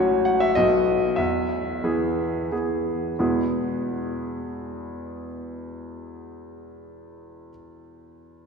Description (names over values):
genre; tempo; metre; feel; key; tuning
classical, romantic triple-time dance for piano with dotted rhythms; 85-102 BPM; 3/4; rubato; E major; A4 = 440 Hz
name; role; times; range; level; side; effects
bright concert grand piano; solo; 0.0-8.5 s; A1 to F#5; -23 LUFS; equal; none
room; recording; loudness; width
wet cathedral reverb, RT60 4.9 s; recorded in a church or concert hall; -21 LUFS; side -5 dB against mid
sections
0.0-3.2 A section; 3.2-7.2 B section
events
slowing down 0.0-3.2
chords
0.0 F#m/A; 0.6 B; 1.2 E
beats
0.57 | 1.18 1.84 2.52 | 3.19 3.85 4.54 | 5.19 5.86 6.54